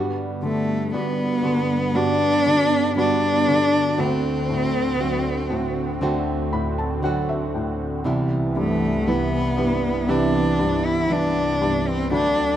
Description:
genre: pop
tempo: 59 BPM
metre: 4/4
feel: straight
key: unclear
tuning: A4 = 440 Hz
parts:
  - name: felt-muted upright piano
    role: accompaniment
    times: 0.0-12.6 s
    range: C2 to B5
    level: -27 LUFS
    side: left 2 dB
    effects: none
  - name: lush unison pad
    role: sustained chords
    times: 0.0-12.6 s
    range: C2 to F#4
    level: -26 LUFS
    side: right 1 dB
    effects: chorus, phaser
  - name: nylon-string guitar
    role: arpeggios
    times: 0.0-12.6 s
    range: C3 to F#4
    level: -27 LUFS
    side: right 3 dB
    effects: none
  - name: rich cello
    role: melody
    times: 0.4-12.6 s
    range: A3 to E4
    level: -21 LUFS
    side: left 1 dB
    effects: none
room: light reverb, small room ambience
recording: rough home demo mix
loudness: -19 LUFS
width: side -11 dB against mid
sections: 0.0-12.6 A section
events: felt piano fill 6.0-8.0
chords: 0.0 Gmaj7; 4.0 D7; 8.0 Cmaj7

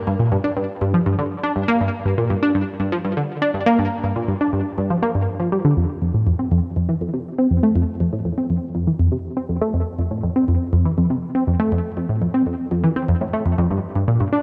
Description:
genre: ambient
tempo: 121 BPM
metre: 4/4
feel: straight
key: unclear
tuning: A4 = 440 Hz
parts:
  - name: tight sequenced synth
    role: solo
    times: 0.1-14.4 s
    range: F2 to D4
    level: -20 LUFS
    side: equal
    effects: chorus, phaser, tape echo
room: moderate plate reverb, RT60 3.4 s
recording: nothing above 10.5 kHz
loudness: -20 LUFS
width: mono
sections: 0.0-14.4 A section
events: none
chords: none

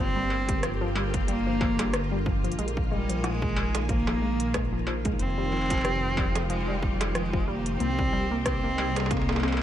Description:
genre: IDM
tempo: 92 BPM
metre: 4/4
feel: swing 56% on 16ths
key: G phrygian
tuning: A4 = 440 Hz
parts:
  - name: rich cello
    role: melody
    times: 0.0-9.6 s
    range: G3 to C4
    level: -30 LUFS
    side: right 1 dB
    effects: ping-pong delay
  - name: soft string machine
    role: sustained chords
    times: 0.0-9.6 s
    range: C3 to Ab5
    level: -33 LUFS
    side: equal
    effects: ensemble chorus, vintage 12-bit sampler grit
  - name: warbly dusty pluck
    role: arpeggios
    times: 0.0-9.5 s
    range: F3 to C4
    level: -34 LUFS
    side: left 2 dB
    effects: chorus, ping-pong delay
  - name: dark detuned saw bass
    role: bass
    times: 0.0-9.6 s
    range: F1 to C2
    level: -31 LUFS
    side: equal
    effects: none
  - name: industrial drum kit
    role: drums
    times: 0.3-9.6 s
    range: hi-hat, rim click, struck metal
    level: -33 LUFS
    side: right 1 dB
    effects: none
  - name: electronic kick drum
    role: drums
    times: 0.5-9.3 s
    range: none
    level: -30 LUFS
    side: equal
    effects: none
room: light reverb, digital ambience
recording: none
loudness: -24 LUFS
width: side -11 dB against mid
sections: 0.0-9.6 A section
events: none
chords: 0.0 Gm7; 2.6 Bb7sus4; 5.2 Fsus2; 7.8 Cm7

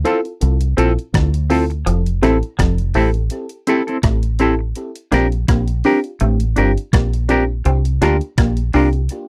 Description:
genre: lovers rock reggae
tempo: 83 BPM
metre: 4/4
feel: swing 54% on 16ths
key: F major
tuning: A4 = 442 Hz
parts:
  - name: mellow FM electric piano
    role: accompaniment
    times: 0.0-9.0 s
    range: Bb3 to A4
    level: -23 LUFS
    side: equal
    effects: chorus, tape echo
  - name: deep dub fingered electric bass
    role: bass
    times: 0.0-9.1 s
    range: F1 to D2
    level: -19 LUFS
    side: equal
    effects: none
  - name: semi-hollow electric guitar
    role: stabs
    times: 0.1-8.9 s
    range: C4 to Bb4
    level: -20 LUFS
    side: equal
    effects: tremolo
  - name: detuned 8-bit digital drum machine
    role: drums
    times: 0.1-9.3 s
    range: hi-hat, kick drum, rim click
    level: -22 LUFS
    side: equal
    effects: tape echo
  - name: semi-hollow electric guitar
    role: riff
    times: 1.9-9.0 s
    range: F3 to D4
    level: -26 LUFS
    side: equal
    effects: phaser
room: little or no reverb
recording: dry, close 1970s-style studio recording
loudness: -17 LUFS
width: mono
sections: 0.0-9.3 A section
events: none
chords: 0.0 Dm7; 1.9 Fmaj7; 4.8 Bb6; 7.7 C9sus4

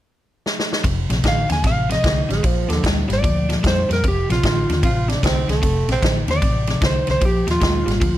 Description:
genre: electric blues shuffle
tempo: 150 BPM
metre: 4/4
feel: swing 64% on 8ths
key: F mixolydian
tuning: A4 = 441 Hz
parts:
  - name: swinging big-band drum kit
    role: drums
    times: 0.5-8.1 s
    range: kick drum, ride cymbal, snare drum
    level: -21 LUFS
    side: equal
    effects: none
  - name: overdriven electric guitar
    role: riff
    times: 0.8-8.2 s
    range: F2 to G3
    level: -23 LUFS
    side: left 2 dB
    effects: none
  - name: vintage muted fingered electric bass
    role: bass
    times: 0.8-8.2 s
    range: F1 to F2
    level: -22 LUFS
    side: equal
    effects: none
  - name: electric slide guitar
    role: melody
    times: 1.3-8.2 s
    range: F4 to Ab5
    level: -22 LUFS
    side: right 1 dB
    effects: none
  - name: growling tenor saxophone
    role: second line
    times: 2.3-6.2 s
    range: D3 to F4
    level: -25 LUFS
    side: right 4 dB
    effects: none
room: light reverb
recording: none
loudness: -16 LUFS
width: side -13 dB against mid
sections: 0.8-8.2 A section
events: drum fill 0.4-0.8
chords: 0.0 N.C.; 0.8 F7; 2.4 Bb; 4.0 F; 7.2 Bb

